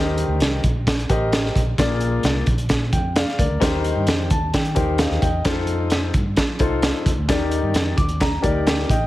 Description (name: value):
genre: uptempo 1960s-style soul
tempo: 131 BPM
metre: 4/4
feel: straight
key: unclear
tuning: A4 = 440 Hz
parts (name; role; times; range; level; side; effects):
- warm upright piano; accompaniment; 0.0-9.1 s; Bb2 to D6; -23 LUFS; left 2 dB; none
- vintage muted fingered electric bass; bass; 0.0-9.1 s; A1 to F3; -24 LUFS; equal; none
- crunchy breakbeat drum kit; drums; 0.2-9.0 s; hi-hat, kick drum, snare drum; -20 LUFS; equal; none
room: light reverb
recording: heavily compressed radio sound, multiband compression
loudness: -18 LUFS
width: side -16 dB against mid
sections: 0.0-9.1 A section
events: upright piano fill 4.1-5.5, 7.7-9.1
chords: 0.0 Eb6; 1.8 Bb7; 3.6 Eb6; 5.5 F7; 7.3 Ebmaj7